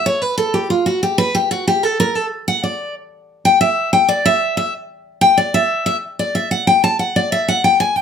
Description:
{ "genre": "bluegrass", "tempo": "186 BPM", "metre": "4/4", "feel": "straight", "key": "E dorian", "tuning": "A4 = 440 Hz", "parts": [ { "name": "picked steel-string acoustic guitar", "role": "solo", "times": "0.0-8.0 s", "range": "F4 to A5", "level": "-14 LUFS", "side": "left 1 dB", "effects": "none" } ], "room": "moderate studio reverb, RT60 0.5 s", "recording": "none", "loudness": "-14 LUFS", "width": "side -7 dB against mid", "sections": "0.0-4.7 A section; 4.7-8.0 A section", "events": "steel-string acoustic guitar solo 0.0-8.0", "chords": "none", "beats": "0.21 0.54 | 0.86 1.18 1.51 1.83 | 2.15 2.48 2.80 3.12 | 3.44 3.77 4.09 4.41 | 4.74 5.06 5.38 5.71 | 6.03 6.35 6.68 7.00 | 7.32 7.65 7.97" }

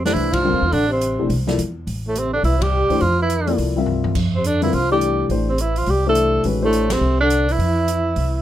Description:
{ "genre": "modal jazz", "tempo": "210 BPM", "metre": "4/4", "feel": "swing 62% on 8ths", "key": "F major", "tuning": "A4 = 440 Hz", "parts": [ { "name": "breathy tenor saxophone", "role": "melody", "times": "0.0-8.4 s", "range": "A3 to A4", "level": "-20 LUFS", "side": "right 3 dB", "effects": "plate reverb" }, { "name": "trombone with cup mute", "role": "second line", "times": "0.0-8.4 s", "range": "A2 to A3", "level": "-24 LUFS", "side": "left 4 dB", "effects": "none" }, { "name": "upright bass", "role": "bass", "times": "0.0-8.4 s", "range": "E1 to Gb2", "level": "-22 LUFS", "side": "equal", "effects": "none" }, { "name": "dark baby grand piano", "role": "accompaniment", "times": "0.1-6.9 s", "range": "D3 to E5", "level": "-22 LUFS", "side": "left 4 dB", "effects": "none" }, { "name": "open jazz drum kit", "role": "drums", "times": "0.1-8.2 s", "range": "crash cymbal, hi-hat, kick drum, ride cymbal, snare drum, toms", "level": "-28 LUFS", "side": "right 1 dB", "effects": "none" } ], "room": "moderate studio ambience, RT60 0.5 s", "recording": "none", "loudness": "-16 LUFS", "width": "side -12 dB against mid", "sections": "0.0-8.4 A section", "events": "band accent 0.3, 2.6, 6.9; drum fill 3.9", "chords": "0.0 Fmaj9", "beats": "0.15 0.44 | 0.72 1.01 1.30 1.58 | 1.87 2.15 2.44 2.73 | 3.01 3.30 3.58 3.87 | 4.16 4.44 4.73 5.01 | 5.30 5.59 5.87 6.16 | 6.44 6.73 7.02 7.30 | 7.59 7.87 8.16" }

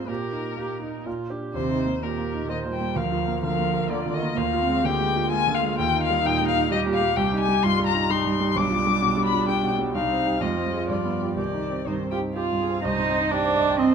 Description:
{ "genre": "quick classical-period movement for piano quartet", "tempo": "127 BPM", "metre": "3/4", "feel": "straight", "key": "Eb major, C minor from 7.2 s", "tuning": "A4 = 440 Hz", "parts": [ { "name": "muted violin", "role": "melody", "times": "0.0-13.9 s", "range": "Bb4 to D6", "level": "-26 LUFS", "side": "left 8 dB", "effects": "none" }, { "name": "muted cello", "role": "second line", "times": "0.0-13.9 s", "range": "Bb2 to G4", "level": "-27 LUFS", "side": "right 6 dB", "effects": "none" }, { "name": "clear concert grand piano", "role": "accompaniment", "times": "0.0-13.9 s", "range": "B1 to G5", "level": "-27 LUFS", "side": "right 1 dB", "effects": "none" }, { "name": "muted viola", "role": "accompaniment", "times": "0.0-13.9 s", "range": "D4 to Eb5", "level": "-30 LUFS", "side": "right 3 dB", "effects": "none" } ], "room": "moderate recital hall reverb, RT60 1.4 s", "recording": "close, detailed microphones", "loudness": "-21 LUFS", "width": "side -6 dB against mid", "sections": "0.0-1.5 A section; 1.5-12.8 B section; 12.8-13.9 C section", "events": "none", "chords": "0.1 Eb/Bb; 1.1 Bb; 1.5 Eb; 3.0 Bb/D; 4.4 Bb7/D; 5.8 Eb; 7.2 Cm; 8.6 G7/B; 10.0 Cm; 10.4 Fm; 10.9 G7; 11.4 Cm", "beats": "| 0.09 0.57 1.06 | 1.54 2.02 2.49 | 2.96 3.43 3.90 | 4.38 4.85 5.32 | 5.79 6.25 6.71 | 7.17 7.63 8.10 | 8.56 9.03 9.49 | 9.96 10.42 10.89 | 11.38 11.87 12.36 | 12.84 13.32 13.79" }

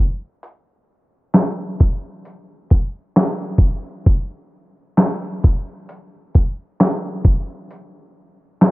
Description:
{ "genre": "hip hop", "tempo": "66 BPM", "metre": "4/4", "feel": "swing 57% on 16ths", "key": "none", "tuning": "none", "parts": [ { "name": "dusty soul sampler-style drum kit", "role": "drums", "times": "0.4-8.7 s", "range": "handclaps, hi-hat, kick drum, snare drum", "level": "-14 LUFS", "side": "equal", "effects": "overdrive, vintage 12-bit sampler grit" } ], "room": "light reverb", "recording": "cassette tape, low-pass filter, nothing above 7.6 kHz", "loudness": "-16 LUFS", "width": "side -20 dB against mid", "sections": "0.0-8.7 A section", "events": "filter sweep 0.0-8.7", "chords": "none", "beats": "| 0.43 1.34 2.25 3.16 | 4.07 4.97 5.88 6.79 | 7.70 8.61" }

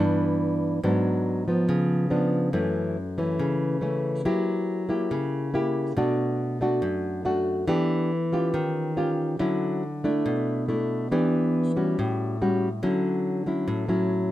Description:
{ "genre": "bossa nova", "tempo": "140 BPM", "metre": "4/4", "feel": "straight", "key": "unclear", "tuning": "A4 = 442 Hz", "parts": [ { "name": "nylon-string guitar", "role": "solo", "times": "0.0-14.3 s", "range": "F#2 to G4", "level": "-23 LUFS", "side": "equal", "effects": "none" } ], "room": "moderate studio reverb, RT60 0.8 s", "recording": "none", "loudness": "-23 LUFS", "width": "side -14 dB against mid", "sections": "0.0-14.3 A section", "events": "none", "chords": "0.0 Cmaj9 (rootless); 0.8 G#m7b5; 1.7 C#7b9; 2.5 F#m7; 4.3 F#7b9; 6.0 Bm7; 7.7 Em7; 8.5 Eb9; 9.4 Dmaj9; 10.3 Bm7; 11.1 Em7; 12.0 A6; 12.8 Dmaj9", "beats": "0.39 | 0.82 1.25 1.68 2.11 | 2.54 2.96 3.39 3.82 | 4.25 4.68 5.11 5.54 | 5.97 6.39 6.82 7.25 | 7.68 8.11 8.54 8.97 | 9.39 9.82 10.25 10.68 | 11.11 11.54 11.96 12.39 | 12.82 13.25 13.68 14.11" }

